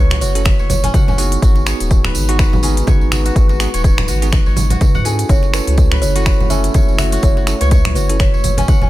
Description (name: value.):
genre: afro house.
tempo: 124 BPM.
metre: 4/4.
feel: swing 57% on 16ths.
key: F# dorian.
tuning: A4 = 441 Hz.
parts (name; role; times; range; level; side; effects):
kalimba; melody; 0.0-1.1, 5.3-8.9 s; B4 to E5; -24 LUFS; right 2 dB; tape echo.
dark analog pad; sustained chords; 0.0-8.9 s; G#3 to C#5; -27 LUFS; left 3 dB; lush chorus, sidechain pumping.
kora; arpeggios; 0.0-8.9 s; C#4 to F#5; -25 LUFS; left 1 dB; sidechain pumping, tape echo.
round analog bass; bass; 0.0-8.9 s; D#1 to G#2; -17 LUFS; equal; sidechain pumping.
downlifter; sound effects; 0.0-1.4 s; none; -44 LUFS; equal; none.
deep house drum kit; drums; 0.1-8.8 s; finger snaps, hi-hat; -22 LUFS; left 1 dB; none.
congas; percussion; 0.1-8.9 s; none; -23 LUFS; right 3 dB; none.
tambourine; percussion; 0.1-8.9 s; none; -29 LUFS; right 6 dB; none.
bell-like tine electric piano; stabs; 0.4-8.2 s; B3 to A4; -25 LUFS; right 4 dB; fast stereo tremolo, vintage 12-bit sampler grit, sidechain pumping, tape echo.
electronic kick drum; drums; 0.5-8.8 s; none; -12 LUFS; equal; none.
room: small room ambience.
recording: none.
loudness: -12 LUFS.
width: side -16 dB against mid.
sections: 0.0-8.9 A section.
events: none.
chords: 0.0 F#m7; 1.4 G#m7; 5.3 F#m7.